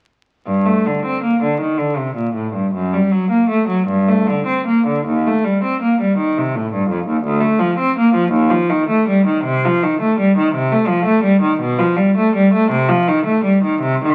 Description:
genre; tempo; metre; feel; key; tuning
classical, baroque-style suite movement for unaccompanied cello; 48-57 BPM (dotted quarters); 6/8; rubato; G minor; A4 = 440 Hz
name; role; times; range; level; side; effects
clear cello; solo; 0.5-14.1 s; D2 to C4; -16 LUFS; equal; none
room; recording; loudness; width
wet large studio reverb, RT60 0.9 s; very old 78 rpm record, vinyl crackle; -16 LUFS; mono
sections
0.4-14.1 A section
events
none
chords
none

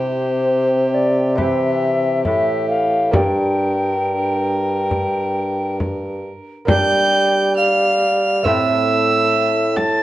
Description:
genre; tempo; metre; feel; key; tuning
classical, renaissance-style consort dance; 68 BPM; 4/4; straight; G dorian; A4 = 440 Hz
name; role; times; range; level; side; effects
mellow hollow tenor recorder; melody; 0.0-10.0 s; C5 to A5; -20 LUFS; left 2 dB; none
rich violin; second line; 0.0-10.0 s; G4 to A6; -23 LUFS; right 4 dB; none
lute; accompaniment; 0.0-10.0 s; G2 to C5; -24 LUFS; right 2 dB; none
mellow bassoon; bass; 0.0-10.0 s; G2 to G3; -20 LUFS; right 1 dB; none
frame drum; percussion; 1.4-10.0 s; none; -21 LUFS; left 1 dB; none
room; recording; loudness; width
moderate stone room reverb, RT60 1.1 s; worn, warbling old tape, cassette tape, warbly pitch drift, nothing above 10.9 kHz; -15 LUFS; side -14 dB against mid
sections
0.0-6.7 A section; 6.7-10.0 B section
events
none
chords
0.0 C; 3.1 Gm; 8.5 Am

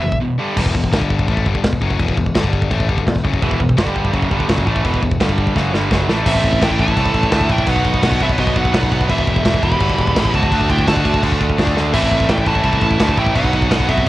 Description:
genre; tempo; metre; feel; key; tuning
heavy metal; 169 BPM; 4/4; straight; E minor; A4 = 440 Hz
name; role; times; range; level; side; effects
high-gain lead guitar; melody; 0.0-0.2, 6.3-14.1 s; D#5 to B5; -21 LUFS; equal; distortion, cassette tape
distorted electric guitar; riff; 0.0-14.1 s; E2 to D4; -22 LUFS; left 6 dB; overdrive
tight distorted guitar; riff; 0.0-0.6, 3.4-14.1 s; E2 to D4; -22 LUFS; right 6 dB; distortion
modern bright picked electric bass; bass; 0.0-14.1 s; E1 to D2; -20 LUFS; equal; none
modern studio drum kit; drums; 0.1-14.1 s; crash cymbal, kick drum, snare drum; -18 LUFS; equal; cassette tape
dark smooth lead guitar; second line; 6.3-14.1 s; B3 to G4; -25 LUFS; right 6 dB; overdrive
room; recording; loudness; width
little or no reverb; home recording on cassette; -14 LUFS; side -16 dB against mid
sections
0.6-6.3 A section; 6.3-14.1 B section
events
break 0.2-0.6; drum fill 5.6-6.3, 11.8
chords
0.4 G5; 0.6 E5; 0.9 G5; 1.3 Em; 2.4 G5; 2.7 Em; 3.8 G5; 4.1 Em; 5.2 G5; 5.6 Em; 6.3 Am; 7.7 B; 9.1 Em; 10.5 D; 11.9 Am; 13.4 B

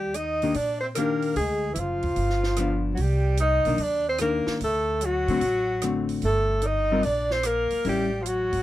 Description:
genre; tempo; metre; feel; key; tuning
jazz, small-group swing and bop; 148 BPM; 4/4; swing 67% on 8ths; unclear; A4 = 439 Hz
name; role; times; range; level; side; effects
breathy alto saxophone; melody; 0.0-8.6 s; E4 to Eb5; -26 LUFS; left 1 dB; none
breathy tenor saxophone; second line; 0.0-8.6 s; E3 to Eb4; -31 LUFS; right 3 dB; none
upright bass; bass; 0.0-8.6 s; Gb1 to Bb2; -28 LUFS; right 1 dB; none
compact cocktail drum kit; drums; 0.1-8.6 s; hi-hat, kick drum, rim click, snare drum; -37 LUFS; right 2 dB; none
hollow-body jazz guitar; accompaniment; 0.4-8.1 s; D3 to Bb4; -26 LUFS; left 4 dB; none
room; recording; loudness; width
light reverb; none; -22 LUFS; side -14 dB against mid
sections
0.0-8.6 A section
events
none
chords
0.0 Ebmaj7; 1.4 Ddim; 2.2 G7; 3.0 Cm9; 4.6 D7; 6.2 Gmadd9; 7.8 A7

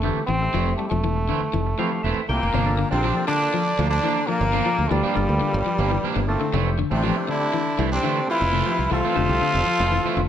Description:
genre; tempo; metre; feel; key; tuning
afrobeat; 120 BPM; 4/4; straight; G dorian; A4 = 439 Hz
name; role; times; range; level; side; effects
trombone with metal mute; melody; 0.0-10.3 s; G3 to F4; -24 LUFS; equal; slapback echo
percussive tonewheel organ; accompaniment; 0.0-9.6 s; A3 to G5; -32 LUFS; equal; slow rotary speaker
electric guitar at the edge of break-up; arpeggios; 0.0-10.3 s; C3 to G3; -28 LUFS; left 8 dB; none
electric guitar at the edge of break-up; stabs; 0.0-10.2 s; E3 to D4; -29 LUFS; right 7 dB; none
fingered electric bass; bass; 0.0-10.3 s; E1 to D2; -24 LUFS; right 1 dB; none
growling trumpet; second line; 2.3-10.3 s; G3 to A4; -30 LUFS; right 4 dB; slapback echo
raspy baritone saxophone; second line; 2.3-10.3 s; G2 to F3; -31 LUFS; left 4 dB; none
room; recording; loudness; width
light reverb; none; -19 LUFS; side -10 dB against mid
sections
0.0-2.5 A section; 2.5-10.3 B section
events
tonewheel organ fill 1.5-2.5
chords
0.0 Fmaj7; 2.5 Gm7; 6.5 Fmaj7

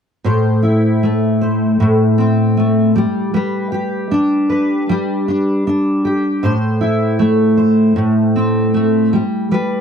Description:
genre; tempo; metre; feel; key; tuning
pop; 78 BPM; 4/4; straight; A minor; A4 = 440 Hz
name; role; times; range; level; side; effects
fingerpicked steel-string acoustic guitar; accompaniment; 0.2-9.8 s; A2 to C5; -13 LUFS; equal; double-tracked left and right
room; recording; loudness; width
light reverb; dry, close 1970s-style studio recording; -13 LUFS; side -7 dB against mid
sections
0.3-9.8 A section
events
none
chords
0.3 Am; 3.0 G; 6.4 Am; 9.1 G

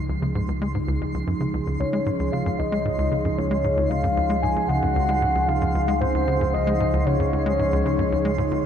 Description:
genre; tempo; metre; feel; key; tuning
ambient, sequencer-driven space music; 114 BPM; 4/4; straight; Db major; A4 = 440 Hz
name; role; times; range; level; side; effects
sweeping resonant pad; sustained chords; 0.0-8.7 s; Db3 to Ab4; -26 LUFS; right 1 dB; chorus
warm sub bass; bass; 0.0-8.7 s; Db2; -29 LUFS; equal; none
twinkling granular texture; texture; 0.0-8.7 s; C6; -36 LUFS; right 2 dB; built-in reverb
tight sequencer bass; riff; 0.1-8.6 s; Db2 to Ab3; -26 LUFS; equal; ping-pong delay
soft octave-layered synth lead; melody; 1.8-8.7 s; C5 to Ab5; -24 LUFS; left 1 dB; chorus, ping-pong delay
room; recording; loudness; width
wet huge ambient reverb, RT60 9.0 s; in a vast, echoing space, cassette tape; -20 LUFS; side -8 dB against mid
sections
0.0-8.7 A section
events
fade-in on synth texture 0.0-8.7; filter sweep on analog synth bass 0.0-8.7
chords
0.0 Dbmaj7

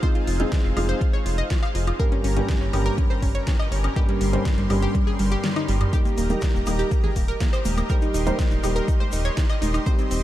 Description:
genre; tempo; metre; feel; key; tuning
progressive house; 122 BPM; 4/4; straight; unclear; A4 = 439 Hz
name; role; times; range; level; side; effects
supersaw pad; sustained chords; 0.0-10.2 s; Db4 to C6; -33 LUFS; equal; sidechain pumping
analog pluck; arpeggios; 0.0-10.2 s; G3 to F5; -28 LUFS; equal; chorus, sidechain pumping, dub echo
felt-muted upright piano; stabs; 0.0-10.2 s; G2 to C5; -28 LUFS; right 1 dB; sidechain pumping, dub echo
electronic kick drum; drums; 0.0-10.0 s; none; -22 LUFS; equal; none
pop drum kit; drums; 0.0-10.2 s; hi-hat, snare drum, toms, woodblock; -32 LUFS; left 1 dB; overdrive
round analog bass; bass; 0.3-10.2 s; Eb1 to G1; -24 LUFS; equal; sidechain pumping
egg shaker; percussion; 5.9-10.2 s; none; -42 LUFS; left 5 dB; none
congas; percussion; 6.3-9.7 s; none; -35 LUFS; right 2 dB; sidechain pumping on perc
room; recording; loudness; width
little or no reverb; dark, warm production; -20 LUFS; side -14 dB against mid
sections
0.0-10.2 A section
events
kick drops out 5.4-5.9; drum fill 5.4-5.9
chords
0.0 Fm7; 2.0 Gdim; 5.9 Eb

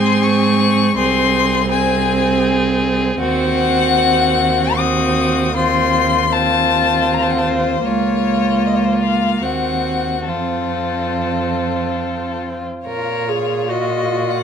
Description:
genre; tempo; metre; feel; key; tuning
classical, slow romantic movement for string quartet; 67-82 BPM; 3/4; rubato; Bb minor from 3.2 s; A4 = 439 Hz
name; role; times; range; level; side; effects
clear violin; melody; 0.0-14.4 s; A4 to Eb6; -19 LUFS; left 9 dB; none
rich violin; second line; 0.0-14.4 s; F4 to Ab4; -22 LUFS; left 3 dB; none
clear viola; accompaniment; 0.0-14.4 s; Bb3 to Bb4; -20 LUFS; right 2 dB; none
rich cello; bass; 0.0-14.4 s; C2 to Bb2; -20 LUFS; right 4 dB; none
room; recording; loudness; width
light reverb; close, detailed microphones; -14 LUFS; side -7 dB against mid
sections
0.0-12.9 A section; 12.9-14.4 B section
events
none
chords
0.0 Ab; 1.0 Ab/C; 3.2 Cdim/Eb; 7.9 Bbm/Db; 9.4 Cdim/Eb; 10.3 F; 12.9 Bbm

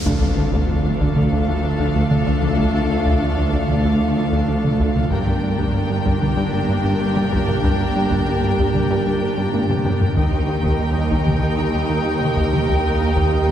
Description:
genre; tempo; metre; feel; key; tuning
cinematic, hybrid orchestral and electronic film score; 95 BPM; 4/4; straight; D phrygian; A4 = 439 Hz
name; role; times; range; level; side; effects
glassy FM pad; sustained chords; 0.0-13.5 s; A3 to G5; -28 LUFS; left 2 dB; none
riser and impact; sound effects; 0.0-2.6 s; none; -26 LUFS; left 1 dB; none
rich symphonic violin section; melody; 0.1-13.5 s; F5 to G5; -29 LUFS; left 2 dB; none
rich symphonic violin section; second line; 0.1-13.5 s; A4 to Bb4; -30 LUFS; left 3 dB; none
clear symphonic viola section; accompaniment; 0.1-13.5 s; D4 to Eb4; -30 LUFS; left 1 dB; none
warm French horn section; sustained chords; 0.1-13.5 s; A3 to G4; -28 LUFS; right 2 dB; none
analog pluck; arpeggios; 0.1-13.5 s; D3 to D4; -31 LUFS; left 3 dB; none
plucky analog bass; riff; 0.1-13.5 s; D2 to G3; -24 LUFS; equal; none
rich symphonic cello section; bass; 0.1-13.5 s; D2 to G2; -25 LUFS; right 2 dB; none
warm symphonic double bass section; bass; 0.1-13.5 s; G1 to Eb2; -24 LUFS; right 2 dB; none
taiko ensemble; drums; 0.1-13.5 s; none; -24 LUFS; left 1 dB; none
room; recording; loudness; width
wet scoring stage reverb, RT60 2.0 s; heard from further back in the room; -16 LUFS; side -10 dB against mid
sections
0.1-13.5 A section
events
impact 0.1-2.6; drum fill 9.5-10.2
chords
0.1 Dm; 5.1 Gm; 10.2 Eb

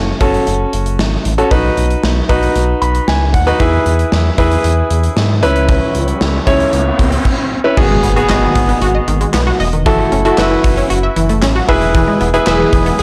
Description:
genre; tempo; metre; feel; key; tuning
synth-pop; 115 BPM; 4/4; straight; F# dorian; A4 = 437 Hz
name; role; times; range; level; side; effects
clear concert grand piano; accompaniment; 0.0-13.0 s; B3 to B5; -17 LUFS; equal; none
smooth synth bass; bass; 0.0-13.0 s; E1 to G#2; -18 LUFS; equal; tube saturation
gated 80s drum kit; drums; 0.2-13.0 s; crash cymbal, handclaps, hi-hat, kick drum, snare drum; -19 LUFS; equal; none
riser and impact; sound effects; 5.1-13.0 s; none; -24 LUFS; equal; none
analog pluck; arpeggios; 7.8-13.0 s; D#3 to E5; -20 LUFS; equal; chorus, tape echo
phased analog pad; sustained chords; 12.2-13.0 s; E3 to G#4; -21 LUFS; equal; phaser, chorus
room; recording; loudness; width
light reverb, studio ambience; blown-out, overdriven recording, overdrive; -13 LUFS; mono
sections
0.0-7.8 A section; 7.8-13.0 B section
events
grand piano fill 2.6-3.6; riser 5.1-7.8; impact 7.8-9.9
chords
0.0 F#m; 1.5 B; 3.6 E; 5.4 C#m7; 7.8 G#m7; 9.9 F#m7; 11.7 E

